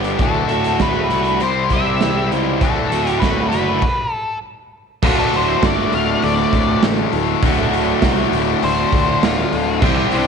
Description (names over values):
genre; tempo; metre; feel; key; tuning
classic rock; 100 BPM; 4/4; straight; D mixolydian; A4 = 439 Hz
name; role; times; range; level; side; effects
fingerpicked twelve-string acoustic guitar; accompaniment; 0.0-10.3 s; C3 to C5; -28 LUFS; left 10 dB; none
raw garage guitar; riff; 0.0-10.3 s; D2 to C5; -21 LUFS; right 14 dB; overdrive
tight distorted guitar; riff; 0.0-10.3 s; D2 to C5; -20 LUFS; left 13 dB; distortion
fuzz picked electric bass; bass; 0.0-10.3 s; D1 to C#2; -24 LUFS; equal; overdrive
raw garage drum kit; drums; 0.0-10.3 s; crash cymbal, hi-hat, kick drum, snare drum; -21 LUFS; right 3 dB; none
octave-fuzz lead guitar; melody; 0.2-10.3 s; D4 to F5; -22 LUFS; left 2 dB; distortion, slapback echo
room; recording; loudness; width
light reverb, small room ambience; 1960s-style stereo with parts hard left and right; -14 LUFS; side -6 dB against mid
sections
0.0-5.0 A section; 5.0-10.3 B section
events
stop 3.8-5.0; lead electric guitar solo 5.0-10.3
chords
0.2 D; 1.4 C; 2.6 D; 3.8 N.C.; 5.0 D